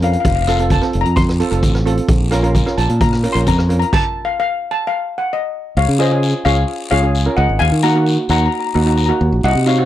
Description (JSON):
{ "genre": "calypso", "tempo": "131 BPM", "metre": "4/4", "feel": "straight", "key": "Bb harmonic minor", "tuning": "A4 = 439 Hz", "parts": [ { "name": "steel pan", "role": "melody", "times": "0.0-9.8 s", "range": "C5 to C6", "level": "-19 LUFS", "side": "left 4 dB", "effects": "none" }, { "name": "steel pan", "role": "accompaniment", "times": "0.0-9.9 s", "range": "Bb3 to Bb4", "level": "-20 LUFS", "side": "right 3 dB", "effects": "none" }, { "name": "modern bright fingered electric bass", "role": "bass", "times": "0.0-9.9 s", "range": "F1 to Eb3", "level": "-15 LUFS", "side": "equal", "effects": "none" }, { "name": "street-band drum kit", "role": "drums", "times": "0.0-4.0 s", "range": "crash cymbal, hi-hat, kick drum, rim click", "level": "-18 LUFS", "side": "equal", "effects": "none" }, { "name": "guiro", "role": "percussion", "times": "0.3-9.8 s", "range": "none", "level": "-29 LUFS", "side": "left 6 dB", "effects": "none" } ], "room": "studio reverb", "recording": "dry, close 1970s-style studio recording", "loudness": "-13 LUFS", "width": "side -12 dB against mid", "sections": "0.0-5.8 A section; 5.8-9.9 B section", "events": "steel pan solo 0.0-5.8; stop 3.9-5.8", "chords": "0.3 F; 2.1 Bbm; 3.9 N.C.; 5.8 Db; 7.6 Ebm", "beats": "| 0.26 0.72 1.18 1.63 | 2.09 2.55 3.01 3.47 | 3.93 4.39 4.85 5.30 | 5.76 6.22 6.68 7.14 | 7.60 8.06 8.52 8.97 | 9.43" }